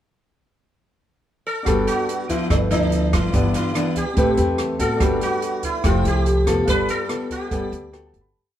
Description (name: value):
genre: bossa nova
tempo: 144 BPM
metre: 4/4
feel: straight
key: G major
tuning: A4 = 443 Hz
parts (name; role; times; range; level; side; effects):
- sitar; melody; 1.5-8.1 s; D4 to B4; -24 LUFS; right 1 dB; none
- warm concert grand piano; accompaniment; 1.6-8.4 s; C4 to B5; -29 LUFS; right 2 dB; none
- nylon-string guitar; accompaniment; 1.7-8.3 s; G2 to B4; -22 LUFS; left 2 dB; none
- upright bass; bass; 1.7-8.3 s; F1 to E2; -23 LUFS; equal; none
- open jazz drum kit; drums; 1.7-8.2 s; hi-hat, kick drum, rim click; -26 LUFS; right 1 dB; none
room: moderate stone room reverb, RT60 1.3 s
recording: band playing live in one room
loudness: -18 LUFS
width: side -11 dB against mid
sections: 0.0-1.7 pickup bar; 1.7-8.3 A section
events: fade-out 6.7-8.3; grand piano fill 7.7-8.3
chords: 0.0 N.C.; 1.7 Gmaj9; 2.5 G13; 3.3 G6; 4.2 Am9; 5.0 Gmaj9; 5.8 Fmaj9; 6.7 G9; 7.5 Gmaj9